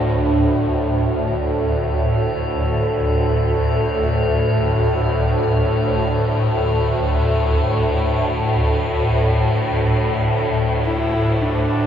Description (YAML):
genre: dark ambient drone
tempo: free time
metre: none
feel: none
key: unclear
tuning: A4 = 440 Hz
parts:
  - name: swarming drone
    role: drone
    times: 0.0-11.9 s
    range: D2 to A2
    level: -17 LUFS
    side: equal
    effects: built-in reverb
  - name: metallic inharmonic drone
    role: texture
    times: 0.0-11.9 s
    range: D4 to A4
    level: -25 LUFS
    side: left 1 dB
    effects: chorus, built-in reverb
  - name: dark horsehead fiddle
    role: melody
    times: 10.9-11.9 s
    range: D4 to E4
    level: -22 LUFS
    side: equal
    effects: diffuse ambient delay
room: wet lush hall reverb, RT60 3.0 s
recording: dreamy mix soaked in reverb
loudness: -16 LUFS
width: side -9 dB against mid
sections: 0.2-11.9 A section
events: fade-out on synth drone 0.2-11.9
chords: 0.0 D5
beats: free time